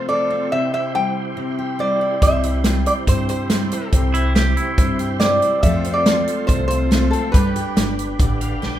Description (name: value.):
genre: honky-tonk and classic country.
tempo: 141 BPM.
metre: 4/4.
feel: straight.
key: C major.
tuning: A4 = 440 Hz.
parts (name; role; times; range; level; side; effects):
lap resonator guitar; melody; 0.0-8.6 s; A4 to G5; -21 LUFS; equal; none.
overdriven tonewheel organ; accompaniment; 0.0-8.8 s; D4 to G5; -29 LUFS; right 5 dB; slow rotary speaker, chorus vibrato.
picked steel-string acoustic guitar; accompaniment; 0.0-8.8 s; C3 to C5; -24 LUFS; left 2 dB; none.
upright bass; bass; 2.2-8.8 s; G1 to G2; -22 LUFS; equal; none.
natural country drum kit; drums; 2.2-8.7 s; hi-hat, kick drum, snare drum; -19 LUFS; equal; none.
twangy electric guitar; second line; 4.1-5.1 s; E4 to G4; -24 LUFS; right 1 dB; none.
room: moderate large studio reverb, RT60 1.1 s.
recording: minimal, uncompressed stereo recording.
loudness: -16 LUFS.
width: side -12 dB against mid.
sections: 0.0-8.8 A section.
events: tonewheel organ fill 8.2-8.8; drum fill 8.6.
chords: 0.0 F; 0.5 C; 5.6 F; 7.3 G.